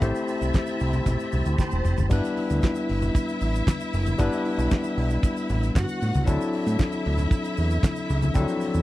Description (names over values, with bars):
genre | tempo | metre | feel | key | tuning
disco | 115 BPM | 4/4 | straight | G major | A4 = 437 Hz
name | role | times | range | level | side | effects
rich studio string section | second line | 0.0-8.8 s | C4 to F#5 | -32 LUFS | right 1 dB | none
barky tine electric piano | accompaniment | 0.0-8.8 s | F3 to C5 | -27 LUFS | left 3 dB | none
tonewheel organ | sustained chords | 0.0-2.1 s | G4 to B5 | -34 LUFS | right 1 dB | chorus vibrato, slow rotary speaker
fat analog bass | bass | 0.0-8.8 s | E1 to A2 | -24 LUFS | right 1 dB | none
damped 70s drum kit | drums | 0.0-8.8 s | crash cymbal, handclaps, hi-hat, kick drum, snare drum, toms | -22 LUFS | right 1 dB | none
congas | percussion | 0.0-8.5 s | none | -34 LUFS | left 3 dB | none
tube shaker | percussion | 0.0-8.8 s | none | -48 LUFS | right 18 dB | none
room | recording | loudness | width
little or no reverb | dry, close 1970s-style studio recording | -22 LUFS | side -16 dB against mid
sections
0.0-2.1 A section; 2.1-8.8 B section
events
drum fill 1.6-2.1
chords
0.0 Am9; 2.1 G6; 6.3 D9